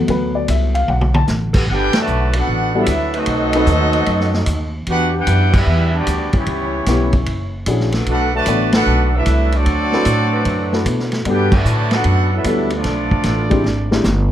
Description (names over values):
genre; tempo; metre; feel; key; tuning
jazz, big band swing; 150 BPM; 4/4; swing 66% on 8ths; G major; A4 = 440 Hz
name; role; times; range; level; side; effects
warm upright piano; accompaniment; 0.0-3.7, 6.9-14.0 s; F#3 to A5; -20 LUFS; left 2 dB; none
upright bass; bass; 0.0-14.3 s; F#1 to B2; -18 LUFS; equal; none
vintage drum kit; drums; 0.1-14.2 s; crash cymbal, hi-hat, kick drum, ride cymbal, snare drum, toms; -21 LUFS; equal; none
clear saxophone section; sustained chords; 1.5-13.7 s; E3 to B4; -28 LUFS; equal; none
warm trumpet section; melody; 1.7-14.3 s; B3 to A5; -21 LUFS; right 1 dB; none
clear trombone section; second line; 1.7-14.3 s; D3 to G4; -22 LUFS; right 1 dB; none
room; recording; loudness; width
light reverb; dark, warm production; -14 LUFS; side -11 dB against mid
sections
0.0-1.7 A section; 1.7-14.3 B section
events
upright piano solo 0.0-1.7; drum fill 0.9-1.3, 13.7-14.3; band accent 1.9, 5.5, 8.7, 11.5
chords
0.0 Gmaj9 (rootless); 1.7 Gmaj9; 3.3 B7b9; 4.9 Em9; 6.5 C#m7b5; 7.3 F#7b13; 8.1 Bm7; 9.7 D13; 11.3 Gmaj9; 12.9 Bm7b5; 13.7 E7alt